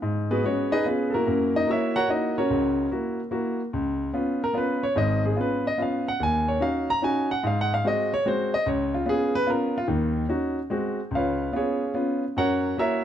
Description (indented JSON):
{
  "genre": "jazz",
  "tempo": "146 BPM",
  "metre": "3/4",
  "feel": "swing 66% on 8ths",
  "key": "Db mixolydian",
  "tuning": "A4 = 440 Hz",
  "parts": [
    { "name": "warm grand piano", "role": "solo", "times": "0.0-13.0 s", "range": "Ab1 to Bb5", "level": "-22 LUFS", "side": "equal", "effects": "none" }
  ],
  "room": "wet large studio reverb, RT60 1.3 s",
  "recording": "dark, warm production",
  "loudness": "-22 LUFS",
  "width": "side -10 dB against mid",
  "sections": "0.0-11.1 A section; 11.1-13.0 A section",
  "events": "grand piano solo 0.0-13.0",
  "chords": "0.0 Abm7; 0.8 Db7; 1.3 Gb7; 3.7 Db7; 6.2 Ebm7; 7.4 Ab7; 8.7 Db7; 9.9 Ebm7; 10.7 Ab7; 11.1 Db7; 12.4 Gb7"
}